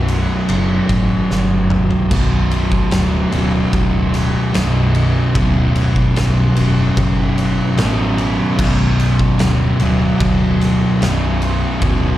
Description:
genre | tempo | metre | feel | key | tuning
stoner and doom metal | 74 BPM | 4/4 | straight | B minor | A4 = 440 Hz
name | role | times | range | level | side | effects
fuzz guitar | riff | 0.0-12.2 s | B1 to B2 | -16 LUFS | equal | distortion
hollow-body short-scale fingered electric bass | bass | 0.0-12.2 s | B0 to A1 | -18 LUFS | equal | overdrive
oversized low-tuned drum kit | drums | 0.1-12.0 s | crash cymbal, kick drum, ride cymbal, snare drum, toms | -20 LUFS | equal | none
room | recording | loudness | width
little or no reverb | live gig heard through the venue's PA, recital hall reverb | -13 LUFS | side -14 dB against mid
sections
0.0-2.1 A section; 2.1-12.2 B section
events
drum fill 1.3-2.1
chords
0.0 B5; 2.1 Bm

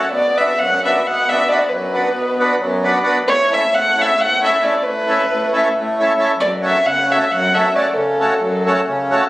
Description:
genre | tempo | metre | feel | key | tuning
balkan folk | 269 BPM (eighths) | 7/8 | straight | unclear | A4 = 440 Hz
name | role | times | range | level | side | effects
dark violin | melody | 0.0-8.9 s | A4 to F#5 | -16 LUFS | equal | none
accordion | accompaniment | 0.0-9.2 s | F#2 to B4 | -17 LUFS | equal | none
room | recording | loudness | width
wet recital hall reverb, RT60 1.7 s | recorded on a phone in the room, club ambience | -14 LUFS | side -17 dB against mid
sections
0.1-9.3 A section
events
none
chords
0.1 Bm; 3.3 A; 6.4 F#m

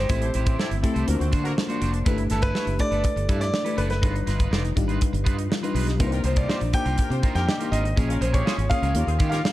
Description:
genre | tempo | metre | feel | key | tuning
polished 1980s jazz-funk pop | 122 BPM | 4/4 | straight | unclear | A4 = 440 Hz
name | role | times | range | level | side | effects
clear concert grand piano | melody | 0.0-9.5 s | A4 to G5 | -29 LUFS | equal | none
FM electric piano with soft pad layer | accompaniment | 0.0-9.5 s | G3 to Eb5 | -29 LUFS | left 3 dB | lush chorus
electric guitar at the edge of break-up | riff | 0.0-9.5 s | Ab3 to D5 | -34 LUFS | right 4 dB | lush chorus
fretless electric bass | bass | 0.0-9.4 s | E#1 to Eb3 | -25 LUFS | equal | analog chorus
modern studio drum kit | drums | 0.1-9.5 s | hi-hat, kick drum, snare drum | -25 LUFS | equal | none
warm horn section | second line | 0.2-1.5, 6.1-9.4 s | G3 to C5 | -35 LUFS | left 1 dB | none
room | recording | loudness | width
light reverb, small room ambience | dark, warm production | -21 LUFS | side -16 dB against mid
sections
0.0-9.5 A section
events
none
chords
0.1 Am7; 1.1 D7alt; 2.1 G69; 4.0 G7b13; 6.0 Cm11; 8.0 Bbm7; 9.0 Eb9

